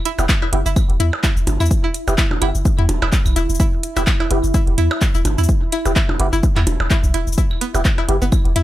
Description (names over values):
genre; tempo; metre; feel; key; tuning
minimal techno; 127 BPM; 4/4; swing 56% on 16ths; E minor; A4 = 440 Hz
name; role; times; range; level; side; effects
pulsing gated texture; texture; 0.0-8.6 s; E4; -29 LUFS; right 1 dB; chorus, built-in reverb, sidechain pumping
string-like resonator pluck; riff; 0.1-8.6 s; B3 to E4; -24 LUFS; equal; chorus, sidechain pumping, dub echo
house drum kit; drums; 0.1-8.6 s; handclaps, hi-hat, shaker; -24 LUFS; equal; small room reverb
percussive organ stab; stabs; 0.2-8.2 s; B3 to G4; -24 LUFS; right 1 dB; ensemble chorus, digital delay
punchy sub bass; bass; 0.2-8.6 s; E1 to E2; -18 LUFS; equal; sidechain pumping
percussion blips and claves; percussion; 0.2-8.4 s; none; -26 LUFS; right 2 dB; small room reverb, digital delay
electronic kick drum; drums; 0.3-8.4 s; none; -17 LUFS; equal; small room reverb
room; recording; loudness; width
little or no reverb; none; -15 LUFS; side -14 dB against mid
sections
0.0-8.6 A section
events
none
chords
0.0 Em